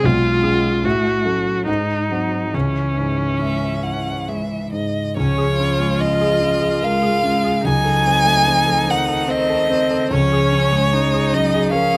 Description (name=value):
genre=classical, slow romantic movement for piano quartet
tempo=67-78 BPM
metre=3/4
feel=rubato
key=C# minor, Db major from 5.2 s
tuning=A4 = 440 Hz
part: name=warm violin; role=melody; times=0.0-12.0 s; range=Db5 to Ab5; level=-21 LUFS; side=equal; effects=none
part: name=rich cello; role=second line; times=0.0-12.0 s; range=Eb3 to A3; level=-28 LUFS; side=equal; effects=none
part: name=rich viola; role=accompaniment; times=0.0-12.0 s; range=C4 to F#4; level=-25 LUFS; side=equal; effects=none
part: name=warm concert grand piano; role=accompaniment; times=0.0-12.0 s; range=B1 to C5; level=-23 LUFS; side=equal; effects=none
room=light reverb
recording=close, detailed microphones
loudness=-18 LUFS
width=mono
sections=0.0-5.2 A section; 5.2-12.0 B section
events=none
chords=0.0 C#7/B; 0.8 F#m/A; 1.7 G#7; 2.5 C#m; 5.2 Db; 7.7 Cdim7/Db; 10.1 Db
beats=| 0.04 0.85 1.68 | 2.54 3.41 4.28 | 5.16 6.00 6.83 | 7.66 8.47 9.29 | 10.12 10.93 11.72